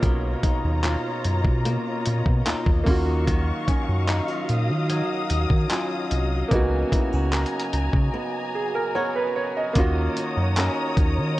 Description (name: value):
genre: contemporary R&B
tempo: 74 BPM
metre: 4/4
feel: straight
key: unclear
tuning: A4 = 440 Hz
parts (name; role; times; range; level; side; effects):
- clear concert grand piano; accompaniment; 0.0-11.4 s; A#3 to Eb5; -29 LUFS; right 2 dB; none
- dark studio string section; sustained chords; 0.0-11.4 s; Gb3 to Eb6; -30 LUFS; left 1 dB; sidechain pumping
- flamenco guitar; arpeggios; 0.0-11.4 s; B2 to Bb4; -29 LUFS; left 1 dB; ping-pong delay
- round analog bass; bass; 0.0-11.4 s; B1 to Eb3; -23 LUFS; equal; none
- dusty soul sampler-style drum kit; drums; 0.0-11.2 s; handclaps, hi-hat, kick drum; -23 LUFS; equal; none
room: studio ambience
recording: worn, warbling old tape, cassette tape, warbly pitch drift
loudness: -21 LUFS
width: side -17 dB against mid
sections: 0.0-9.8 A section; 9.8-11.4 B section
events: break 8.1-9.8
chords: 0.0 Bmaj9#11; 2.9 Ebm9; 6.5 Db13sus4; 9.8 Ebm7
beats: | 0.03 0.84 1.65 2.46 | 3.27 4.08 4.89 5.70 | 6.51 7.33 8.13 8.95 | 9.76 10.57 11.38